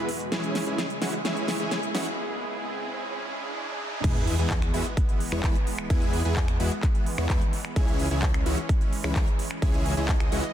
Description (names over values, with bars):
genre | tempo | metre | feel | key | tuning
EDM, festival progressive house | 129 BPM | 4/4 | straight | unclear | A4 = 440 Hz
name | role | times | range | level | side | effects
supersaw pad | sustained chords | 0.0-10.5 s | C#2 to D#5 | -35 LUFS | right 1 dB | sidechain pumping
big supersaw lead | riff | 0.0-10.4 s | E3 to C#5 | -30 LUFS | equal | sidechain pumping, low-pass filter, digital delay
riser and sub drop | sound effects | 0.1-5.9 s | none | -36 LUFS | right 1 dB | none
big-room dance drum kit | drums | 0.1-10.5 s | crash cymbal, finger snaps, handclaps, hi-hat, snare drum | -33 LUFS | equal | soft clipping on snare
detuned saw bass | bass | 4.0-10.4 s | C#2 to E2 | -28 LUFS | equal | sidechain pumping
electronic kick drum | drums | 4.0-10.2 s | none | -24 LUFS | equal | none
room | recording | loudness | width
light reverb, digital ambience | dense, heavily limited modern master, high-pass filter | -24 LUFS | side -11 dB against mid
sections
0.0-4.0 A section; 4.0-10.5 B section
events
build-up 0.0-4.0; drum fill 0.0-2.2; filter sweep on supersaw synth 0.0-4.0; riser 0.1-4.0; break 2.2-4.0; drop 4.0-10.5; impact 4.0-5.9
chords
0.3 C#m; 4.0 E; 7.8 C#m